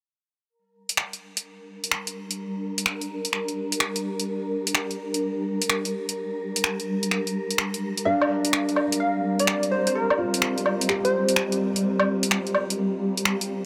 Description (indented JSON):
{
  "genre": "future garage",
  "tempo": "127 BPM",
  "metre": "4/4",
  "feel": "swing 66% on 16ths",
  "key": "G minor",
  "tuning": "A4 = 440 Hz",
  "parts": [
    { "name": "granular cloud pad", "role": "sustained chords", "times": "1.7-13.7 s", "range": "G3 to F5", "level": "-30 LUFS", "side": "equal", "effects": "built-in reverb" },
    { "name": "wind-like tuned noise texture", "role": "texture", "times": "1.6-13.7 s", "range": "Bb4", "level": "-38 LUFS", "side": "equal", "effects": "built-in reverb" },
    { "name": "deep house drum kit", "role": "drums", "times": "0.9-13.5 s", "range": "finger snaps, hi-hat, woodblock", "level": "-27 LUFS", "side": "equal", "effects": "overdrive" },
    { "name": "glassy wavetable pluck", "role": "melody", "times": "8.1-11.4 s", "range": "Bb4 to F5", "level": "-30 LUFS", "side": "equal", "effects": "chorus, cassette tape, digital delay" },
    { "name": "felt-muted upright piano", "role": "accompaniment", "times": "8.1-13.7 s", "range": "D4 to G4", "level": "-31 LUFS", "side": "equal", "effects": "digital delay" }
  ],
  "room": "moderate huge ambient reverb, RT60 7.4 s",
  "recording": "none",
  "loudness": "-25 LUFS",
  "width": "mono",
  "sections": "0.5-13.7 A section",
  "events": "filter sweep on ambient pad 0.5-13.7",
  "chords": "0.5 Gm; 8.1 Cmadd9/G"
}